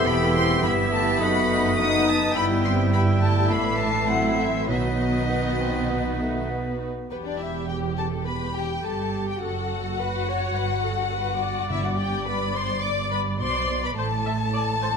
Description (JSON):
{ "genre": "quick classical-period movement for symphony orchestra", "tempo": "105 BPM", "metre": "4/4", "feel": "straight", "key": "E minor", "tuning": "A4 = 440 Hz", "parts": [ { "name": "warm studio violin section", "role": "melody", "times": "0.0-15.0 s", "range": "B4 to D#6", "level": "-28 LUFS", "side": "left 3 dB", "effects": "none" }, { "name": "bright silver concert flute", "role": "second line", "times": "0.0-6.8 s", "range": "B6 to C7", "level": "-30 LUFS", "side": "left 1 dB", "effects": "none" }, { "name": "clear clarinet", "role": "second line", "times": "0.0-6.8 s", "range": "B3 to G4", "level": "-33 LUFS", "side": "left 2 dB", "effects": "none" }, { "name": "dark cor anglais", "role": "second line", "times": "0.0-6.8 s", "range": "D#5 to F#5", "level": "-32 LUFS", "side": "right 4 dB", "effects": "none" }, { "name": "warm studio violin section", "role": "second line", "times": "0.0-15.0 s", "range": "B3 to A5", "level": "-31 LUFS", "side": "left 4 dB", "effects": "none" }, { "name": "mellow bassoon", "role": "accompaniment", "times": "0.0-7.1 s", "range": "F#3 to C4", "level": "-31 LUFS", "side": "right 2 dB", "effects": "none" }, { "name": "warm studio viola section", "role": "accompaniment", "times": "0.0-14.9 s", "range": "B3 to E5", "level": "-30 LUFS", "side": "left 1 dB", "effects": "none" }, { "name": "warm French horn section", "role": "sustained chords", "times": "0.0-6.5 s", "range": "D#3 to D#4", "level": "-29 LUFS", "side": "left 6 dB", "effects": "none" }, { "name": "rich studio double bass section", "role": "bass", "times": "0.0-15.0 s", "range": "E1 to B1", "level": "-30 LUFS", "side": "right 4 dB", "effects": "none" }, { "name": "warm studio cello section", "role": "bass", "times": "0.0-15.0 s", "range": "E2 to B2", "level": "-29 LUFS", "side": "right 3 dB", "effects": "none" }, { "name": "timpani", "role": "percussion", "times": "11.7-12.5 s", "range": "G2", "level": "-33 LUFS", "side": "equal", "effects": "none" } ], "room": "moderate concert hall reverb, RT60 2.2 s", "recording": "none", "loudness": "-21 LUFS", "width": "side -6 dB against mid", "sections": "0.0-7.1 A section; 7.1-15.0 B section", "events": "none", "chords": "0.1 Em; 1.2 B7/F#; 2.3 Em/G; 3.5 Am; 4.7 B; 7.1 Em; 9.4 F#madd11; 10.6 Gmaj9; 11.7 G; 14.0 Am" }